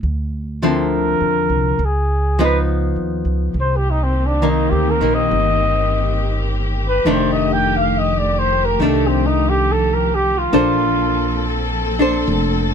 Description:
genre	jazz ballad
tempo	69 BPM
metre	4/4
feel	swing 68% on 8ths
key	Bb major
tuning	A4 = 440 Hz
part	archtop guitar, miked and amplified	accompaniment	0.0-12.7 s	D3 to C5	-20 LUFS	left 2 dB	none
part	upright bass	bass	0.0-12.7 s	F1 to E2	-20 LUFS	right 1 dB	none
part	dark trumpet	melody	0.7-11.7 s	C4 to G5	-19 LUFS	equal	none
part	warm studio string section	sustained chords	3.5-12.7 s	Eb3 to A4	-24 LUFS	left 2 dB	none
room	little or no reverb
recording	close, detailed microphones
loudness	-15 LUFS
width	side -7 dB against mid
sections	0.0-12.7 A section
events	trumpet solo 0.0-12.7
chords	0.0 Dm9; 1.8 Db9; 3.5 Cm7; 7.0 F13; 10.5 Bbmaj9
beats	| 0.03 0.90 1.78 2.66 | 3.54 4.42 5.30 6.17 | 7.05 7.92 8.79 9.66 | 10.53 11.40 12.27

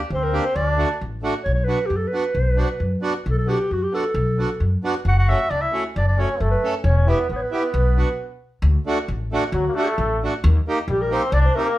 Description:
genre	klezmer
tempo	134 BPM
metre	2/4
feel	straight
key	B minor, D phrygian dominant from 8.6 s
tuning	A4 = 440 Hz
part	mellow clarinet	melody	0.1-11.8 s	F#4 to F#5	-23 LUFS	equal	none
part	trombone with straight mute	second line	0.1-1.0, 5.1-11.8 s	F#3 to F#4	-27 LUFS	left 1 dB	none
part	upright bass	bass	0.1-11.5 s	E1 to F#2	-20 LUFS	equal	none
part	accordion	accompaniment	0.3-11.7 s	A3 to A4	-25 LUFS	right 2 dB	none
room	moderate studio reverb, RT60 0.6 s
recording	band playing live in one room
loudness	-18 LUFS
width	side -15 dB against mid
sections	0.0-1.5 A section; 1.5-8.6 B section; 8.6-11.8 C section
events	stop 8.2-8.6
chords	0.0 Gm/D; 0.6 D; 1.5 Bm; 5.0 F#m; 6.8 Em; 7.7 Bm; 8.2 N.C.; 8.6 D; 10.4 Eb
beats	0.10 | 0.55 1.00 | 1.45 1.90 | 2.35 2.80 | 3.25 3.70 | 4.15 4.60 | 5.05 5.50 | 5.95 6.40 | 6.85 7.30 | 7.75 8.20 | 8.65 9.10 | 9.55 10.00 | 10.45 10.89 | 11.34

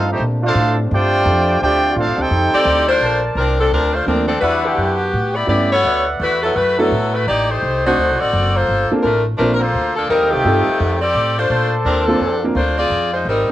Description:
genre	jazz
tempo	170 BPM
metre	4/4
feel	swing 64% on 8ths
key	Bb major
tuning	A4 = 441 Hz
part	clear trumpet section	melody	0.0-2.9 s	A3 to G5	-17 LUFS	right 1 dB	plate reverb
part	clear trombone section	second line	0.0-2.9, 13.5 s	Eb3 to G4	-22 LUFS	right 3 dB	cassette tape, plate reverb
part	warm trombone section	sustained chords	0.0-3.0 s	C3 to F4	-26 LUFS	left 1 dB	cassette tape, plate reverb
part	upright bass	bass	0.0-13.5 s	F#1 to Bb2	-21 LUFS	equal	none
part	edgy saxophone section	melody	2.5-13.5 s	D3 to D5	-16 LUFS	left 1 dB	plate reverb
part	mellow trumpet section	stabs	3.0-12.5 s	E4 to A5	-22 LUFS	left 1 dB	cassette tape, plate reverb
part	clear concert grand piano	accompaniment	4.1-13.5 s	F3 to C5	-20 LUFS	right 2 dB	cassette tape, plate reverb
room	moderate small room reverb, RT60 0.6 s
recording	home recording on cassette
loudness	-14 LUFS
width	side -14 dB against mid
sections	0.0-3.0 A section; 3.0-13.5 B section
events	none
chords	0.2 Bbmaj9; 2.3 F13; 3.0 Bbmaj9; 4.4 Em9; 5.1 A7; 5.8 D69; 7.3 Am7b5; 8.0 D7b9; 8.7 Gm11; 10.1 F9; 11.5 Bbmaj9; 12.9 Fm7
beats	| 0.20 0.55 0.90 1.25 | 1.60 1.96 2.31 2.66 | 3.02 3.37 3.72 4.08 | 4.43 4.79 5.14 5.50 | 5.85 6.20 6.56 6.91 | 7.27 7.62 7.98 8.33 | 8.68 9.04 9.39 9.74 | 10.10 10.45 10.80 11.16 | 11.51 11.86 12.21 12.56 | 12.92 13.27

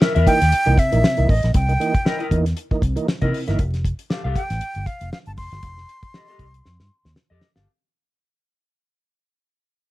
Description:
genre	funk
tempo	118 BPM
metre	4/4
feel	swing 56% on 16ths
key	unclear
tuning	A4 = 440 Hz
part	mellow electric guitar	accompaniment	0.0-7.7 s	E4 to F5	-25 LUFS	left 4 dB	analog chorus
part	damped 70s drum kit	drums	0.0-7.7 s	hi-hat, kick drum, snare drum	-21 LUFS	equal	none
part	vintage muted fingered electric bass	bass	0.2-7.6 s	F1 to C3	-20 LUFS	equal	none
part	breathy silver concert flute	melody	0.3-7.1 s	D#5 to C6	-22 LUFS	right 1 dB	none
part	tonewheel organ	stabs	0.3-3.6 s	C3 to D#4	-25 LUFS	right 4 dB	fast rotary speaker
room	light reverb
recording	vinyl crackle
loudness	-17 LUFS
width	side -17 dB against mid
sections	0.0-7.7 A section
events	fade-out 0.0-7.7; break 3.6-7.7; drum fill 6.6-7.7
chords	0.0 C7#9; 3.6 F9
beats	0.01 0.52 1.04 | 1.55 2.06 2.57 3.08 | 3.59 4.10 4.61 5.12 | 5.63 6.14 6.65 7.16

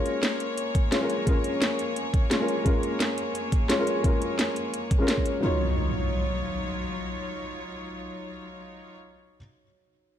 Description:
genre	liquid drum and bass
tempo	173 BPM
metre	4/4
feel	swing 53% on 16ths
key	Eb minor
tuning	A4 = 440 Hz
part	felt-muted upright piano	accompaniment	0.0-10.2 s	Gb3 to Db5	-28 LUFS	left 1 dB	low-pass filter, ping-pong delay
part	rich chamber string section	sustained chords	0.0-9.0 s	Gb3 to Db5	-33 LUFS	left 1 dB	none
part	garage drum kit	drums	0.1-5.3 s	hi-hat, snare drum	-29 LUFS	equal	none
part	electronic kick drum	drums	0.7-5.2 s	none	-24 LUFS	equal	none
part	impact	sound effects	5.4-9.4 s	none	-30 LUFS	equal	none
room	moderate lush hall reverb, RT60 1.7 s, digital ambience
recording	dark, warm production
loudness	-24 LUFS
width	side -10 dB against mid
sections	0.0-5.4 A section; 5.4-8.2 B section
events	filter sweep on felt piano 0.0-5.4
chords	0.0 Bbm7; 5.4 Ebm9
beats	0.23 0.57 0.92 | 1.27 1.62 1.96 2.31 | 2.66 3.00 3.35 3.70 | 4.04 4.39 4.74 5.08 | 5.43 5.78 6.12 6.47 | 6.82 7.17 7.51 7.86

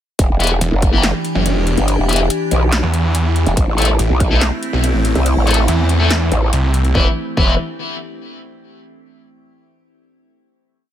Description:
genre	heavy wobble dubstep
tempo	142 BPM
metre	4/4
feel	half-time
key	E minor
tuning	A4 = 440 Hz
part	evolving wavetable pad	sustained chords	0.6-7.1 s	E3 to G4	-23 LUFS	left 1 dB	phaser, built-in reverb, sidechain pumping
part	growl bass	bass	0.2-7.6 s	E1 to C2	-16 LUFS	equal	chorus, overdrive
part	big-room dance drum kit	drums	0.2-6.9 s	handclaps, hi-hat, snare drum	-22 LUFS	equal	small room ambience
part	electronic kick drum	drums	0.2-0.9, 3.6-4.3, 7.0-7.5 s	none	-16 LUFS	equal	small room ambience
part	distorted electric guitar	stabs	0.4-7.5 s	E3 to A4	-21 LUFS	left 4 dB	distortion, digital delay
part	snarling distorted saw bass	bass	0.6-6.9 s	E1 to E2	-15 LUFS	equal	distortion, overdrive
room	digital ambience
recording	none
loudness	-13 LUFS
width	side -11 dB against mid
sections	0.2-7.0 drop; 7.0-8.6 final chord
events	drop 0.2-7.0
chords	0.2 Em7; 3.6 Am; 7.0 E5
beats	| 0.19 0.61 1.03 1.46 | 1.88 2.30 2.73 3.15 | 3.57 3.99 4.42 4.84 | 5.26 5.68 6.11 6.53 | 6.95 7.37

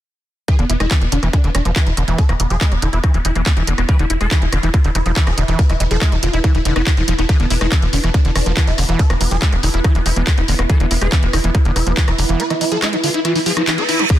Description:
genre	psychedelic trance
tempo	141 BPM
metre	4/4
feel	straight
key	E major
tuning	A4 = 439 Hz
part	swarming rave lead	melody	0.5-14.2 s	B3 to B4	-23 LUFS	equal	chorus, phaser, sidechain pumping, ping-pong delay
part	overdriven acid bass	riff	0.5-14.2 s	D3 to E4	-24 LUFS	moving between left 4 dB and right 4 dB	auto-pan, sidechain pumping, ping-pong delay
part	electronic kick drum	drums	0.5-14.2 s	none	-14 LUFS	equal	none
part	garage drum kit	drums	0.5-14.2 s	crash cymbal, handclaps, hi-hat, rim click	-22 LUFS	equal	none
part	deep dark ambient pad	texture	3.4-14.2 s	E4 to E6	-27 LUFS	right 2 dB	chorus, built-in reverb, sidechain pumping
part	tight sequencer bass	bass	0.6-12.4 s	E1 to F1	-17 LUFS	equal	tube saturation
part	reverse cymbal	sound effects	13.5-14.1 s	none	-21 LUFS	right 6 dB	none
room	little or no reverb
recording	dense, heavily limited modern master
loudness	-14 LUFS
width	side -13 dB against mid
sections	0.5-14.2 A section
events	kick drops out 12.4-14.1; reverse cymbal 13.5-14.1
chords	0.5 E5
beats	| 0.48 0.91 1.33 1.76 | 2.19 2.61 3.04 3.46 | 3.89 4.31 4.74 5.16 | 5.59 6.01 6.44 6.87 | 7.29 7.72 8.14 8.57 | 8.99 9.42 9.85 10.27 | 10.70 11.12 11.55 11.97 | 12.40 12.82 13.25 13.67 | 14.10

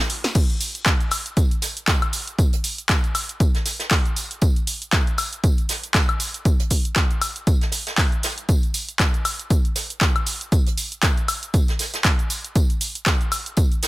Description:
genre	house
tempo	118 BPM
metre	4/4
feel	swing 57% on 16ths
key	none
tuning	none
part	punchy analog drum machine	drums	0.1-13.9 s	crash cymbal, handclaps, hi-hat, shaker, snare drum, woodblock	-23 LUFS	equal	none
part	soft brush drum kit	drums	0.2-13.9 s	hi-hat, snare drum, tambourine	-31 LUFS	right 1 dB	high-pass filter on hats, high-pass filter on snare, high-pass filter on perc, high-pass filter on room
part	electronic kick drum	drums	0.4-13.7 s	none	-19 LUFS	equal	none
room	small room ambience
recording	none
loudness	-19 LUFS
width	side -18 dB against mid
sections	0.0-13.9 A section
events	drum fill 0.0-0.4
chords	none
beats	| 0.35 0.86 1.37 1.88 | 2.39 2.89 3.40 3.91 | 4.42 4.93 5.44 5.95 | 6.45 6.96 7.47 7.98 | 8.49 9.00 9.50 10.01 | 10.52 11.03 11.54 12.05 | 12.55 13.06 13.57

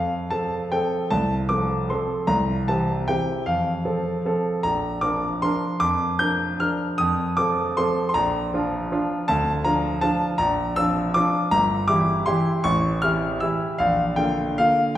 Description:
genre	classical, piano waltz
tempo	156 BPM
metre	3/4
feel	uneven beats, rubato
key	F major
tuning	A4 = 440 Hz
part	warm grand piano	solo	0.0-15.0 s	G1 to G6	-20 LUFS	equal	none
room	wet recital hall reverb, RT60 1.7 s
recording	heard from further back in the room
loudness	-20 LUFS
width	side -12 dB against mid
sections	0.0-15.0 A section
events	none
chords	0.0 F; 2.3 C7; 3.5 F; 4.6 Bb; 7.0 F7; 8.1 Bb; 9.3 Dm; 10.4 Bb; 11.5 Edim/G; 12.6 A7; 13.8 Bb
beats	0.29 0.70 | 1.10 1.49 1.90 | 2.28 2.68 3.08 | 3.46 3.84 4.24 | 4.63 5.02 5.42 | 5.82 6.20 6.60 | 6.99 7.37 7.77 | 8.14 8.51 8.90 | 9.28 9.65 10.03 | 10.39 10.76 11.14 | 11.51 11.87 12.26 | 12.65 13.02 13.41 | 13.79 14.18 14.58

